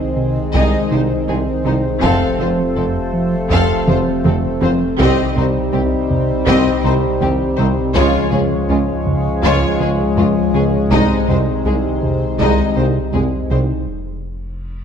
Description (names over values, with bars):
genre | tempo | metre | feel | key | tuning
cinematic, hybrid orchestral and electronic film score | 81 BPM | 4/4 | straight | unclear | A4 = 440 Hz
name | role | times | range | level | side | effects
chorused pulse-width pad | sustained chords | 0.0-13.9 s | Eb3 to Db5 | -23 LUFS | left 1 dB | none
dark French horn section | sustained chords | 0.0-13.9 s | C4 to F4 | -25 LUFS | left 4 dB | none
warm trombone section | sustained chords | 0.0-13.9 s | Ab2 to A3 | -25 LUFS | right 4 dB | none
harp-like synth pluck | arpeggios | 0.0-13.7 s | C3 to Ab4 | -26 LUFS | left 4 dB | none
round analog bass | riff | 0.0-13.7 s | C2 to F3 | -22 LUFS | right 1 dB | none
sub bass with octave | bass | 0.0-14.8 s | F1 to Db2 | -26 LUFS | equal | none
rich chamber violin section | melody | 0.5-13.6 s | F4 to F5 | -24 LUFS | left 5 dB | none
warm symphonic violin section | second line | 0.5-13.6 s | Ab3 to A4 | -24 LUFS | left 4 dB | none
rich symphonic viola section | accompaniment | 0.5-13.6 s | Ab3 to Eb4 | -24 LUFS | equal | none
clear tuba | bass | 0.5-13.7 s | F1 to Db2 | -25 LUFS | right 3 dB | none
rich symphonic cello section | bass | 0.5-13.6 s | C2 to C3 | -25 LUFS | right 2 dB | none
rich symphonic double bass section | bass | 0.5-13.6 s | F1 to Db2 | -26 LUFS | right 2 dB | none
taiko ensemble | drums | 0.5-13.5 s | none | -23 LUFS | equal | none
reverse cymbal | sound effects | 14.3-14.8 s | none | -53 LUFS | left 2 dB | none
room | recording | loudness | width
moderate scoring stage reverb, RT60 1.8 s | dark, warm production | -14 LUFS | side -7 dB against mid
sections
0.0-14.8 A section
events
drum fill 3.9-5.0; break 13.9-14.8; reverse cymbal 14.3-14.8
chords
0.0 Ab/C; 2.0 F; 5.0 Cm; 8.0 Db; 10.9 Ab/C; 13.9 N.C.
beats
0.55 1.29 | 2.03 2.77 3.51 4.25 | 4.99 5.73 6.47 7.21 | 7.95 8.69 9.43 10.18 | 10.92 11.66 12.40 13.14 | 13.88 14.62